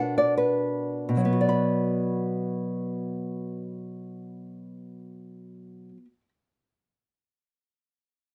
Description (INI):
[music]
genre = children's music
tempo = free time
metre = none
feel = none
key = B minor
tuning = A4 = 437 Hz
[part]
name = nylon-string guitar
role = accompaniment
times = 0.0-6.3 s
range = B2 to B5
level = -28 LUFS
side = equal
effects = none
[sound]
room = light reverb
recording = close, detailed microphones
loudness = -27 LUFS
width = mono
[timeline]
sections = 0.0-1.3 A section; 1.3-7.0 B section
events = nylon-string guitar fill 0.0-1.3; slowing down 0.0-1.3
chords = 0.0 Bm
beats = free time